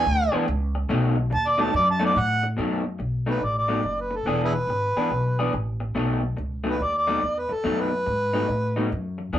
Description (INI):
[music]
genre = electric blues shuffle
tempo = 142 BPM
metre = 4/4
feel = swing 66% on 8ths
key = B mixolydian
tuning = A4 = 440 Hz
[part]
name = mellow harmonica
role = melody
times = 0.0-9.0 s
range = E4 to A5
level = -24 LUFS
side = right 1 dB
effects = overdrive
[part]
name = electric guitar through a small old amp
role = riff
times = 0.0-9.4 s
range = B2 to G#4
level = -27 LUFS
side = left 1 dB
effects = none
[part]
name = upright bass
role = bass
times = 0.0-9.4 s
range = E1 to A2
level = -27 LUFS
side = equal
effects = none
[sound]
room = moderate small room ambience, RT60 0.5 s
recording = rough rehearsal-room recording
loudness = -22 LUFS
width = side -11 dB against mid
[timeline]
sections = 0.0-2.6 A section; 2.6-9.4 B section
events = harmonica solo 0.0-2.6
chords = 0.0 E7; 0.9 B7; 4.3 E7; 6.0 B7